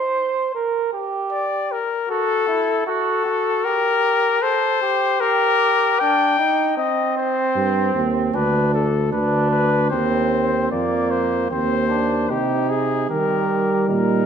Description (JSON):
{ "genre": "classical, imitative canzona for brass ensemble", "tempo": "77 BPM", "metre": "4/4", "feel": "straight", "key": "C minor", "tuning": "A4 = 440 Hz", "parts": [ { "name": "warm flugelhorn", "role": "second line", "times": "0.0-14.3 s", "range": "Bb3 to C5", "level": "-22 LUFS", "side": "right 5 dB", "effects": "none" }, { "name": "mellow trumpet", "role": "melody", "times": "1.3-14.3 s", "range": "G4 to G5", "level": "-20 LUFS", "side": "left 7 dB", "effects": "none" }, { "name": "warm bass trombone", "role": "bass", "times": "7.6-14.3 s", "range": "D2 to Eb3", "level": "-21 LUFS", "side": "right 2 dB", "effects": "none" }, { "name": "mellow euphonium", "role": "accompaniment", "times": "13.1-14.3 s", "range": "G3", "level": "-21 LUFS", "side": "right 2 dB", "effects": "none" } ], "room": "wet recital hall reverb, RT60 1.7 s", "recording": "none", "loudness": "-17 LUFS", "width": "side -7 dB against mid", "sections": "0.0-13.1 A section; 13.1-14.3 B section", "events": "none", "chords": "0.0 N.C.; 0.6 Gm; 2.1 Esus24; 3.7 Gm; 6.8 Cm; 8.3 Bm7/D; 9.9 Cm/Eb; 13.1 Eb", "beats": "| 0.55 1.32 2.10 2.88 | 3.65 4.43 5.21 6.00 | 6.78 7.56 8.34 9.13 | 9.93 10.72 11.51 12.30 | 13.10 13.89" }